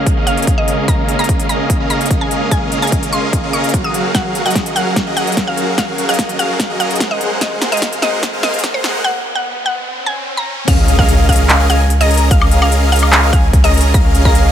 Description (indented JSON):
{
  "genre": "future bass",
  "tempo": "147 BPM",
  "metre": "4/4",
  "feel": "half-time",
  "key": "Db major",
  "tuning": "A4 = 440 Hz",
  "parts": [
    { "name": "mallet-like synth pluck", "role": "melody", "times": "0.0-14.4 s", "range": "C5 to Eb6", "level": "-20 LUFS", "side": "equal", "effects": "chorus, sidechain pumping, dub echo" },
    { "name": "airy breathy pad", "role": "sustained chords", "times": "0.0-9.0 s", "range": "Db3 to F5", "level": "-25 LUFS", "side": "equal", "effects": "chorus, sidechain pumping" },
    { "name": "supersaw chords", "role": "riff", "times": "0.0-14.5 s", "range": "Gb3 to Bb5", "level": "-18 LUFS", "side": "equal", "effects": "sidechain pumping, low-pass filter" },
    { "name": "saturated sub bass", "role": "bass", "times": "0.0-14.5 s", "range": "Gb1 to Db2", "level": "-16 LUFS", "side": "equal", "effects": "sidechain pumping, high-pass filter" },
    { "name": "big-room dance drum kit", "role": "drums", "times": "0.1-14.4 s", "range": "crash cymbal, handclaps, hi-hat, snare drum, woodblock", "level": "-18 LUFS", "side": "equal", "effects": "overdrive" },
    { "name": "electronic kick drum", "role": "drums", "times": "0.1-14.3 s", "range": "none", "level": "-16 LUFS", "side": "equal", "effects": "overdrive" },
    { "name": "riser, swell and impact", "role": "sound effects", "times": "7.2-12.3 s", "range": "none", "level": "-26 LUFS", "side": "equal", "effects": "none" },
    { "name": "airy dreamy lead", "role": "arpeggios", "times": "10.7-14.5 s", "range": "F5 to Bb5", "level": "-22 LUFS", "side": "left 1 dB", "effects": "chorus, sidechain pumping, digital delay" }
  ],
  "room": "light reverb",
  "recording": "high-pass filter",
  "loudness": "-12 LUFS",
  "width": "side -10 dB against mid",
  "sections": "0.0-10.7 A section; 10.7-14.5 B section",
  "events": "build-up 0.0-10.7; filter sweep on supersaw synth 0.0-10.7; filter sweep on analog synth pad 0.0-10.7; filter sweep 0.0-10.7; drum fill 4.1-9.0; riser 7.2-10.7; break 9.0-10.7; swell 9.9-10.7; drop 10.7-14.5; impact 10.7-12.3",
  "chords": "0.0 Db6; 3.9 Gbmaj7; 7.2 Ab7; 10.7 Db6"
}